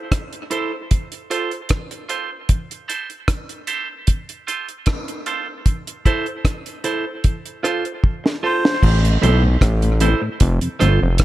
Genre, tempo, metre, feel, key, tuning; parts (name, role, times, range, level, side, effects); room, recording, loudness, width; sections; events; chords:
dub reggae; 76 BPM; 4/4; straight; A minor; A4 = 439 Hz
deep reggae drum kit; drums; 0.1-11.2 s; crash cymbal, hi-hat, kick drum, rim click, snare drum; -18 LUFS; equal
clean electric guitar; accompaniment; 0.5-11.0 s; E4 to C5; -24 LUFS; right 4 dB; high-pass filter, dub echo
melodica; melody; 8.5-8.8 s; C5; -24 LUFS; equal; dub echo
fat analog bass; bass; 8.8-11.2 s; F1 to B1; -15 LUFS; equal
mellow tonewheel organ; accompaniment; 9.0-11.1 s; F2 to C4; -23 LUFS; left 1 dB; chorus vibrato, slow rotary speaker
small room ambience; -18 LUFS; side -15 dB against mid
0.0-8.8 A section; 8.8-11.2 B section
drum fill 8.0-8.8
0.0 Am; 0.9 F; 2.5 Am; 4.1 F; 5.7 Am; 7.2 F; 8.8 Am; 10.4 F